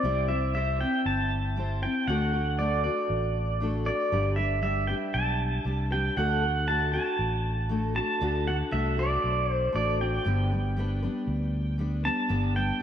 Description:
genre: country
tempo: 117 BPM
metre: 4/4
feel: straight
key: G major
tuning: A4 = 440 Hz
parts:
  - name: pedal steel guitar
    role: melody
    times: 0.0-12.8 s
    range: D5 to A5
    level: -29 LUFS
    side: right 2 dB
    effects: lush chorus, diffuse ambient delay
  - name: picked steel-string acoustic guitar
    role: accompaniment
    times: 0.0-12.8 s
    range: G2 to C5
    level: -31 LUFS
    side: left 3 dB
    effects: wide subtle chorus
  - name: fingered electric bass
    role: bass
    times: 0.0-12.7 s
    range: G1 to D2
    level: -29 LUFS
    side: equal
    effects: none
room: moderate plate reverb, RT60 3.0 s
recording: dreamy mix soaked in reverb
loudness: -25 LUFS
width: side -9 dB against mid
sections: 0.0-12.3 A section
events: none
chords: 0.0 C; 2.1 D; 4.1 G; 6.2 D; 10.3 G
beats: | 0.03 0.54 1.05 1.56 | 2.08 2.59 3.10 3.61 | 4.12 4.63 5.14 5.65 | 6.17 6.68 7.19 7.70 | 8.21 8.72 9.23 9.74 | 10.26 10.77 11.28 11.79 | 12.30 12.81

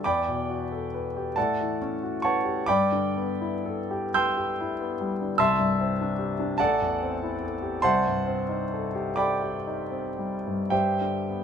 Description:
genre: classical, impressionist solo piano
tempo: 36-50 BPM (dotted quarters)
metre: 6/8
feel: rubato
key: unclear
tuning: A4 = 438 Hz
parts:
  - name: clear concert grand piano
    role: solo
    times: 0.0-11.4 s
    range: A1 to G6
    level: -24 LUFS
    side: equal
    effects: none
room: light reverb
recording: minimal, uncompressed stereo recording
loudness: -24 LUFS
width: side -7 dB against mid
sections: 0.0-11.4 A section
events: none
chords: 0.0 Em11; 1.4 A13; 2.7 G69; 5.4 Cadd9; 6.6 Am7; 7.8 Cm6; 10.7 G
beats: | 0.02 1.36 | 2.65 4.12 | 5.38 6.59 | 7.83 9.17 | 10.71

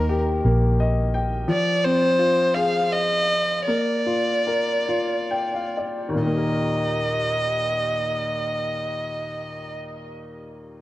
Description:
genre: pop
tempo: 42-58 BPM (dotted quarters)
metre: 6/8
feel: straight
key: Eb major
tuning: A4 = 439 Hz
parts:
  - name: warm violin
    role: melody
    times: 0.0-9.7 s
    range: Bb4 to F5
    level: -23 LUFS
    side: equal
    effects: tape echo
  - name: clear upright piano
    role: accompaniment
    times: 0.0-10.8 s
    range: Eb2 to G5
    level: -25 LUFS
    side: left 1 dB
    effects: none
  - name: vintage muted fingered electric bass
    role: bass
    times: 0.0-1.4 s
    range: Bb1 to Eb2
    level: -21 LUFS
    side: equal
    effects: none
room: moderate plate reverb, RT60 3.5 s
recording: worn, warbling old tape, cassette tape, warbly pitch drift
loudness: -20 LUFS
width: side -16 dB against mid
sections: 0.0-6.2 A section; 6.2-10.8 B section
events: upright piano fill 0.4-1.5, 4.9-6.2; slowing down 1.5-6.2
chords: 0.0 Eb; 1.5 Fm; 3.7 Bb; 6.2 Eb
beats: 0.44 | 1.49 2.54 | 3.66 4.87 | 6.23 7.66 | 9.09 10.52

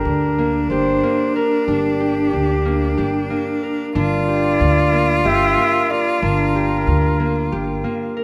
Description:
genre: contemporary instrumental, chamber music in an uneven meter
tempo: 185 BPM (eighths)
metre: 7/8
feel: straight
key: G minor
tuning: A4 = 440 Hz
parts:
  - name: mellow flugelhorn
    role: melody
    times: 0.0-8.1 s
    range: G4 to E5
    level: -24 LUFS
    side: equal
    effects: none
  - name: bright cello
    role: second line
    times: 0.0-8.1 s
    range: D4 to F4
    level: -23 LUFS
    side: equal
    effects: none
  - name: concert harp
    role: arpeggios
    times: 0.0-8.2 s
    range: Bb3 to Bb4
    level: -24 LUFS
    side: equal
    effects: none
  - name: upright bass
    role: bass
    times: 0.1-7.8 s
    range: G1 to D2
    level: -24 LUFS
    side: equal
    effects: none
room: light reverb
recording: close, detailed microphones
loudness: -18 LUFS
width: mono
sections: 0.0-8.2 A section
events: none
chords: 0.0 Gm7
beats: 0.06 0.39 0.71 1.04 1.36 | 1.69 2.01 2.33 2.66 2.98 3.31 3.63 | 3.95 4.28 4.60 4.93 5.25 5.57 5.90 | 6.22 6.54 6.87 7.19 7.51 7.83 8.16

